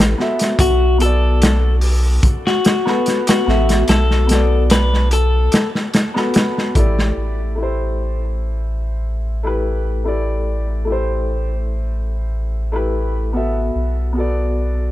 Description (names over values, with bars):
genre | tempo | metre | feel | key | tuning
trip hop | 73 BPM | 4/4 | straight | A dorian | A4 = 440 Hz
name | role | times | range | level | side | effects
warm upright piano | accompaniment | 0.0-14.9 s | A3 to E5 | -22 LUFS | left 1 dB | harmonic tremolo, tape echo
soft dub sub bass | bass | 0.0-14.9 s | A1 to B1 | -18 LUFS | equal | none
crunchy breakbeat drum kit | drums | 0.0-7.2 s | hi-hat, kick drum, snare drum | -17 LUFS | equal | none
clean electric guitar | melody | 0.6-5.7 s | F#4 to B4 | -20 LUFS | left 4 dB | tape echo
room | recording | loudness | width
little or no reverb | none | -15 LUFS | side -14 dB against mid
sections
0.0-7.2 A section; 7.2-14.9 B section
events
none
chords
0.0 A7(no3); 0.6 Bm7; 7.2 Am7; 13.7 Bm7